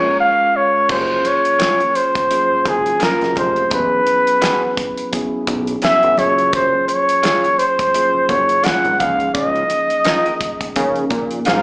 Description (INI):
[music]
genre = lush 1970s-style soul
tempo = 85 BPM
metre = 4/4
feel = swing 58% on 16ths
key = unclear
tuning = A4 = 440 Hz
[part]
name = warm flugelhorn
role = melody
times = 0.0-11.6 s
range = Ab4 to Gb5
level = -14 LUFS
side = equal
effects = none
[part]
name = mellow tine electric piano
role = accompaniment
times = 0.0-11.6 s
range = Eb3 to Bb4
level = -24 LUFS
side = equal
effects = fast stereo tremolo, slapback echo
[part]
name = electric guitar through a small old amp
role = riff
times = 0.0-11.6 s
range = Bb3 to Bb4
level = -24 LUFS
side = right 1 dB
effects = slapback echo
[part]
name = fat analog bass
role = bass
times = 0.0-11.6 s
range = E1 to Db3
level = -22 LUFS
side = equal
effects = none
[part]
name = damped 70s drum kit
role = drums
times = 0.9-11.6 s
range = crash cymbal, hi-hat, kick drum, snare drum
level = -23 LUFS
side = equal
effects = none
[part]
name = congas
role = percussion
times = 0.9-11.6 s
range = none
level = -30 LUFS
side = right 1 dB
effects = none
[sound]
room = light reverb, small room ambience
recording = live gig heard through the venue's PA, club reverb, small speaker sound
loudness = -14 LUFS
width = side -25 dB against mid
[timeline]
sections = 0.9-11.6 A section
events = tine electric piano fill 0.0-0.9; band accent 0.0-0.9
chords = 0.0 Bbm7; 0.9 Gbmaj9; 3.7 E69; 6.2 Gbmaj9; 9.0 Db69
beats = 0.20 | 0.90 1.60 2.31 3.01 | 3.72 4.42 5.13 5.83 | 6.54 7.24 7.94 8.65 | 9.35 10.06 10.76 11.46